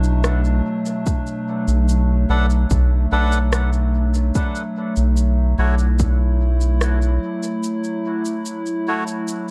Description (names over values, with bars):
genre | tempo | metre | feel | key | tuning
ambient dub | 73 BPM | 4/4 | straight | B minor | A4 = 440 Hz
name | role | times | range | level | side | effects
warbly tape-like pad | sustained chords | 0.0-9.5 s | B2 to E4 | -26 LUFS | equal | chorus, built-in reverb, vintage 12-bit sampler grit
round analog bass | bass | 0.0-7.2 s | B1 | -19 LUFS | equal | tube saturation
electronic shaker and rim click | drums | 0.0-9.5 s | none | -31 LUFS | equal | overdrive, dub echo
electronic kick drum | drums | 1.1-6.2 s | none | -23 LUFS | equal | overdrive
melodica | stabs | 2.3-9.0 s | A3 to F#5 | -30 LUFS | equal | dub echo
room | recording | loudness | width
light reverb, digital ambience | dark, warm production | -19 LUFS | mono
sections
0.0-9.5 A section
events
break 7.6-9.5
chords
0.0 Bm7; 4.4 F#m7/B